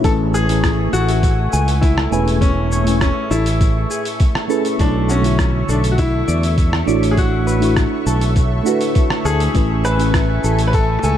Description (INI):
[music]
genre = sunset chillout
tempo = 101 BPM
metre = 4/4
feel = straight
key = A major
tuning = A4 = 438 Hz
[part]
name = bright grand piano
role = melody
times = 0.0-11.2 s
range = C#4 to B4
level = -23 LUFS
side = left 2 dB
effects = digital delay, shimmer reverb
[part]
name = mellow FM electric piano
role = accompaniment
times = 0.0-11.2 s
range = D3 to C#6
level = -21 LUFS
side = moving between left 3 dB and right 4 dB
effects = chorus, phaser, auto-pan, shimmer reverb
[part]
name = lush unison pad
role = sustained chords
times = 0.0-11.2 s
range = A3 to C#6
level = -26 LUFS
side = equal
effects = chorus, phaser, shimmer reverb
[part]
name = fingered electric bass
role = bass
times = 0.0-11.2 s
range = E1 to E2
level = -18 LUFS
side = equal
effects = none
[part]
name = dusty soul sampler-style drum kit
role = drums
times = 0.0-11.2 s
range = cabasa, hi-hat, rim click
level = -26 LUFS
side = equal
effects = none
[part]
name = electronic kick drum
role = drums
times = 0.0-10.9 s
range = none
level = -16 LUFS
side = equal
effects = none
[part]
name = clean electric guitar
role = arpeggios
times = 0.3-11.2 s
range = F#4 to G#5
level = -28 LUFS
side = left 2 dB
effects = digital delay, shimmer reverb
[sound]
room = light reverb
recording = dark, warm production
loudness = -14 LUFS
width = side -10 dB against mid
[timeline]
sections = 0.0-11.2 A section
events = none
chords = 0.0 Amaj7; 4.8 Bm11; 9.6 Amaj7